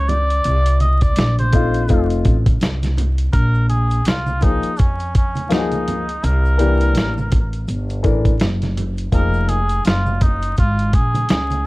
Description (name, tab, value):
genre	hip hop, jazz-hop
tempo	83 BPM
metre	4/4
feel	swing 58% on 16ths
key	Bb minor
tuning	A4 = 438 Hz
part	trumpet with cup mute	melody	0.0-11.7 s	Db4 to Eb5	-23 LUFS	equal	none
part	upright bass	bass	0.0-11.7 s	F1 to F2	-18 LUFS	equal	none
part	dusty soul sampler-style drum kit	drums	0.1-11.7 s	hi-hat, kick drum, snare drum	-17 LUFS	equal	none
part	congas and tube shaker	percussion	0.1-11.6 s	none	-29 LUFS	right 2 dB	none
part	warm upright piano	accompaniment	1.5-9.6 s	E3 to Bb4	-21 LUFS	left 4 dB	none
room	small room reverb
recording	dark, warm production, vinyl crackle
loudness	-15 LUFS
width	side -21 dB against mid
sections	0.0-3.3 A section; 3.3-11.7 B section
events	muted trumpet solo 0.0-3.3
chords	0.5 Cm7; 1.9 F7; 3.3 Bbm11; 6.2 C7; 9.1 Fm7